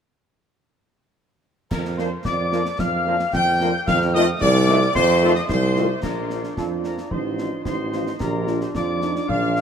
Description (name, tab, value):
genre	military-style march for wind band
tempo	111 BPM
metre	2/4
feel	straight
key	Bb major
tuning	A4 = 435 Hz
part	mellow trumpet section	melody	1.7-9.6 s	A4 to G5	-26 LUFS	left 2 dB	none
part	mellow woodwind section	second line	1.7-9.6 s	F4 to G5	-29 LUFS	left 1 dB	none
part	piccolo	second line	1.7-9.6 s	A5 to G6	-27 LUFS	left 3 dB	none
part	warm tuba	bass	1.7-9.6 s	A1 to F2	-22 LUFS	right 2 dB	none
part	concert snare drum, clash cymbals and concert bass drum	drums	1.7-9.6 s	none	-30 LUFS	left 1 dB	none
part	mellow French horn section	accompaniment	2.0-9.6 s	F3 to F4	-28 LUFS	left 5 dB	none
part	warm trombone section	sustained chords	2.0-9.6 s	Eb3 to Eb4	-30 LUFS	right 2 dB	none
part	mellow euphonium	second line	6.0-9.6 s	D4 to G4	-30 LUFS	right 4 dB	none
room	moderate huge ambient reverb, RT60 4.6 s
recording	heard from further back in the room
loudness	-18 LUFS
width	side -7 dB against mid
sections	1.7-6.0 A section; 6.0-9.6 B section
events	none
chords	1.7 Bb/F; 3.9 F7; 6.0 Bb; 7.1 F7/A; 8.2 Bb